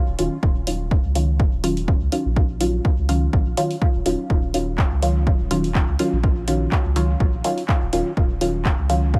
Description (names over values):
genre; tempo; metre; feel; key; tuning
dub techno; 124 BPM; 4/4; swing 55% on 16ths; Eb minor; A4 = 442 Hz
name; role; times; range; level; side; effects
soft dub sub bass; bass; 0.1-9.2 s; Eb1 to Db2; -25 LUFS; equal; sidechain pumping
filtered dub chord stab; stabs; 0.2-9.2 s; Eb3 to F4; -26 LUFS; equal; chorus, phaser, sidechain pumping, dub echo
deep house drum kit; drums; 0.2-9.0 s; handclaps, hi-hat; -32 LUFS; equal; none
electronic kick drum; drums; 0.4-9.2 s; none; -22 LUFS; equal; none
room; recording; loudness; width
digital ambience; none; -21 LUFS; mono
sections
0.0-9.2 A section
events
filter sweep on synth stab 0.0-9.2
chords
0.0 Ebm9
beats
| 0.43 0.91 1.40 1.88 | 2.36 2.85 3.33 3.81 | 4.30 4.78 5.27 5.75 | 6.24 6.72 7.20 7.69 | 8.17 8.65 9.14